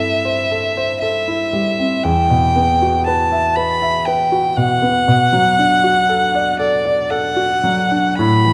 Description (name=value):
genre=classical, impressionist duo for violin and grand piano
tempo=59 BPM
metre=3/4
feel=rubato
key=unclear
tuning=A4 = 440 Hz
part: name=rich violin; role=melody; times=0.0-8.5 s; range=D5 to B5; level=-18 LUFS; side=equal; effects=none
part: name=clear concert grand piano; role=accompaniment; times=0.0-8.5 s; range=E2 to E5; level=-20 LUFS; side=equal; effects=none
room=moderate scoring stage reverb, RT60 1.8 s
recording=dark, warm production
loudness=-16 LUFS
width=mono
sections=0.0-8.5 A section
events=none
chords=0.0 Am7/G; 2.0 Emadd9; 5.1 Bm7